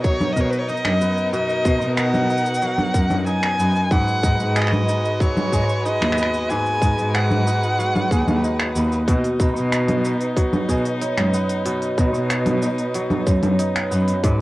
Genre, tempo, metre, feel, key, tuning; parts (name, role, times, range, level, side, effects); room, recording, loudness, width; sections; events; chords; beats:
folktronica; 93 BPM; 4/4; straight; B major; A4 = 444 Hz
dark violin; melody; 0.0-8.8 s; B4 to G#5; -23 LUFS; equal; cassette tape, tape echo, plate reverb
dark string quartet; sustained chords; 0.0-14.4 s; G#3 to B4; -29 LUFS; equal; cassette tape, plate reverb
kora; arpeggios; 0.0-14.4 s; G#2 to A#4; -27 LUFS; equal; cassette tape, plate reverb
electronic kick drum; drums; 0.0-14.4 s; -20 LUFS; equal; cassette tape
organic electronic drum kit; drums; 0.0-14.4 s; congas, finger snaps, hi-hat, shaker; -25 LUFS; equal; cassette tape
warm cello; bass; 0.4-14.3 s; D#2 to B2; -22 LUFS; equal
vibraphone with hard mallets; second line; 9.4-14.3 s; B4 to B5; -28 LUFS; right 4 dB; vintage 12-bit sampler grit, cassette tape, tape echo
light reverb; home recording on cassette; -17 LUFS; side -18 dB against mid
0.0-14.4 A section
0.0 Bmaj7; 3.9 G#m7; 9.1 B
0.04 0.69 | 1.34 1.98 2.63 3.27 | 3.92 4.56 5.21 5.85 | 6.50 7.14 7.79 8.43 | 9.08 9.72 10.37 11.01 | 11.66 12.30 12.95 13.59 | 14.24